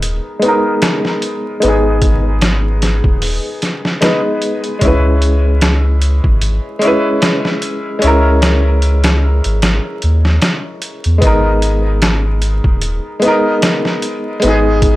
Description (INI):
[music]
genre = trip hop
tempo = 75 BPM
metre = 4/4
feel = swing 56% on 16ths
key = G# minor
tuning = A4 = 441 Hz
[part]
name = bright upright piano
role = accompaniment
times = 0.0-15.0 s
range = G#3 to B4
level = -15 LUFS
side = equal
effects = harmonic tremolo, vintage 12-bit sampler grit, low-pass filter, tape echo
[part]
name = soft dub sub bass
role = bass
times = 0.0-15.0 s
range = D#1 to E2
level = -13 LUFS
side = equal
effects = tube saturation
[part]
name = trip hop sampler-style drum kit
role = drums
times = 0.0-15.0 s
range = hi-hat, kick drum, snare drum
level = -15 LUFS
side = equal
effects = studio reverb
[sound]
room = digital ambience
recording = dry, gritty hardware recording, vinyl crackle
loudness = -11 LUFS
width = side -17 dB against mid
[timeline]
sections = 0.0-15.0 A section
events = filter sweep on upright piano 0.0-15.0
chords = 0.0 G#madd9; 4.8 C#m7; 11.2 G#madd9